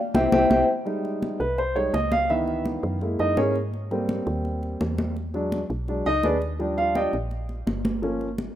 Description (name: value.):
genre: Afro-Cuban jazz.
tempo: 167 BPM.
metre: 4/4.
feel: straight.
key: unclear.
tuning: A4 = 436 Hz.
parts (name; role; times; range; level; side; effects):
vibraphone with soft mallets; melody; 0.1-0.6 s; C5 to G5; -23 LUFS; left 1 dB; none.
warm upright piano; accompaniment; 0.1-8.3 s; Eb3 to G5; -25 LUFS; right 1 dB; none.
woody FM bass; bass; 0.1-8.5 s; G1 to Ab2; -29 LUFS; equal; none.
congas; percussion; 0.1-8.6 s; none; -28 LUFS; left 1 dB; none.
room: light reverb, studio ambience.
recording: rough home demo mix.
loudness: -22 LUFS.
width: side -12 dB against mid.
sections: 0.9-8.6 A section.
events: band accent 0.0-0.9; upright piano solo 0.9-8.6.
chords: 0.1 C; 0.9 Dbmaj9#11; 2.3 Dbm7; 3.0 Gb9; 3.7 Abmaj7; 5.2 E9; 6.6 Ebmaj7; 8.0 Gm7b5.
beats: 0.15 0.51 | 0.86 1.22 1.58 1.94 | 2.30 2.66 3.02 3.37 | 3.73 4.09 4.45 4.81 | 5.17 5.53 5.88 6.24 | 6.60 6.96 7.32 7.67 | 8.03 8.39.